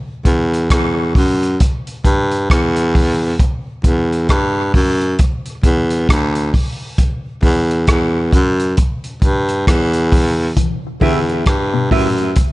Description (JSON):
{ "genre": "dub reggae", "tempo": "67 BPM", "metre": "4/4", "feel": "swing 60% on 16ths", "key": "E minor", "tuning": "A4 = 441 Hz", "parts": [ { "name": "breathy baritone saxophone", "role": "bass", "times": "0.3-12.3 s", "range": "D2 to G2", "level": "-15 LUFS", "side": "equal", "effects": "none" }, { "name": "crunchy breakbeat drum kit", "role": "drums", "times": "0.3-12.5 s", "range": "hi-hat, kick drum, rim click", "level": "-16 LUFS", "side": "equal", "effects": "none" }, { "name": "electric guitar with an envelope filter", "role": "arpeggios", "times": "10.6-12.1 s", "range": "A2 to E3", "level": "-22 LUFS", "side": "left 5 dB", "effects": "phaser, tape echo" }, { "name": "semi-hollow electric guitar", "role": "accompaniment", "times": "11.0-12.1 s", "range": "E4 to E5", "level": "-21 LUFS", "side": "right 5 dB", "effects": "analog chorus, tape echo" } ], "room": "little or no reverb", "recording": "echo-heavy mix, nothing above 10.5 kHz", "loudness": "-13 LUFS", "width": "side -19 dB against mid", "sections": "0.0-12.5 A section", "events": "break 0.0-10.6", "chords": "0.0 Em" }